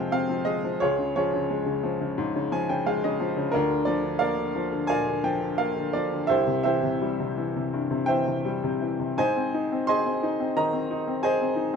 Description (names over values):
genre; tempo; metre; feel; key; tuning
classical, lyrical solo piano; 86 BPM; 4/4; uneven beats, rubato; unclear; A4 = 441 Hz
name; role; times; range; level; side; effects
bright upright piano; solo; 0.0-11.8 s; C2 to C6; -23 LUFS; equal; none
room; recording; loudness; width
moderate studio reverb, RT60 0.7 s; minimal, uncompressed stereo recording; -23 LUFS; side -6 dB against mid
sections
0.0-11.8 A section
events
upright piano fill 2.2-3.5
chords
0.0 Fm; 0.8 Db; 3.5 Bb/D; 6.3 C; 9.2 Ab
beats
0.11 | 0.81 1.49 2.17 2.86 | 3.54 4.21 4.90 5.60 | 6.30 7.01 7.73 8.45 | 9.18 9.89 10.57 11.24